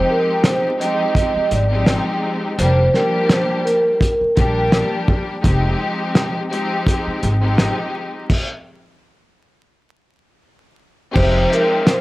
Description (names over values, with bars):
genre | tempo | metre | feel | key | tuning
hip hop, boom-bap hip-hop | 84 BPM | 4/4 | swing 56% on 16ths | F dorian | A4 = 439 Hz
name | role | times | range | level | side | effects
vibraphone with medium mallets | melody | 0.0-4.9, 11.2-12.0 s | Bb4 to Eb5 | -18 LUFS | right 1 dB | high-pass filter, low-pass filter
rich studio string section | accompaniment | 0.0-12.0 s | F3 to G4 | -21 LUFS | left 1 dB | high-pass filter, low-pass filter
cloth-damped thuddy drum kit | drums | 0.4-12.0 s | crash cymbal, hi-hat, kick drum, rim click, shaker, snare drum | -18 LUFS | equal | none
upright bass | bass | 1.4-11.4 s | F1 to Bb1 | -19 LUFS | equal | transformer saturation
bright tonewheel organ | sustained chords | 11.2-12.0 s | C5 to F5 | -31 LUFS | left 1 dB | none
room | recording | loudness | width
small room ambience | dry, gritty hardware recording, vinyl crackle | -15 LUFS | side -19 dB against mid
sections
0.0-11.2 A section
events
stop 8.3-11.2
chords
0.0 Fm7; 2.6 Gm7/F; 5.4 Fm7; 8.3 N.C.; 11.2 Fm7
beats
0.44 1.16 1.87 | 2.58 3.30 4.01 4.73 | 5.44 6.16 6.87 7.58 | 8.30 9.01 9.73 10.44 | 11.15 11.87